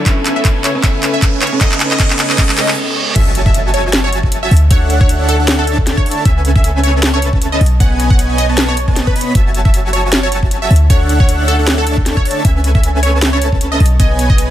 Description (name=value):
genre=future bass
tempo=155 BPM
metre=4/4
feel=swing 56% on 16ths, half-time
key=F# minor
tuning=A4 = 441 Hz
part: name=glassy digital keys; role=accompaniment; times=0.0-3.2 s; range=G#3 to A4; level=-26 LUFS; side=left 1 dB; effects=chorus, sidechain pumping, dub echo
part: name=bright symphonic string section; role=sustained chords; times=0.0-2.8 s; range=C#3 to E4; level=-31 LUFS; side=right 3 dB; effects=none
part: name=dense compressed supersaw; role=riff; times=0.0-14.5 s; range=B3 to B5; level=-19 LUFS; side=right 1 dB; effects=sidechain pumping, low-pass filter
part: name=riser, reverse cymbal and impact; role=sound effects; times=0.0-4.7 s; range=none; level=-22 LUFS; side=right 1 dB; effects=none
part: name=wide unison pluck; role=melody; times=0.1-14.5 s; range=A4 to F#5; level=-20 LUFS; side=right 1 dB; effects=phaser, sidechain pumping, dub echo
part: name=warm 808-style bass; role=bass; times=0.1-14.5 s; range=F#1 to D2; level=-14 LUFS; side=equal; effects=sidechain pumping, high-pass filter
part: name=electronic kick drum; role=drums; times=0.1-14.4 s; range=none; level=-12 LUFS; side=equal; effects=none
part: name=trap drum kit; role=drums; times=0.1-14.5 s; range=crash cymbal, handclaps, hi-hat, snare drum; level=-18 LUFS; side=equal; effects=high-pass filter on snare, high-pass filter on hats, high-pass filter on cymbals
part: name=airy dreamy lead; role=arpeggios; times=3.2-14.5 s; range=F#5 to B5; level=-24 LUFS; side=equal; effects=chorus, vintage 12-bit sampler grit, sidechain pumping, dub echo
room=little or no reverb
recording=none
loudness=-10 LUFS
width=side -12 dB against mid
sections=0.0-3.2 A section; 3.2-14.5 B section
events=build-up 0.0-3.2; drum fill 0.0-2.8; riser 0.0-2.8; reverse cymbal 2.4-3.2; stop 2.8-3.2; drop 3.2-14.5; impact 3.2-4.7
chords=0.1 Amaj9/C#; 1.4 B9; 3.2 F#m9; 4.5 Dmaj9; 6.3 Amaj9/C#; 7.6 B9; 9.4 F#m9; 10.7 Dmaj9; 12.4 Amaj9/C#; 13.8 Badd9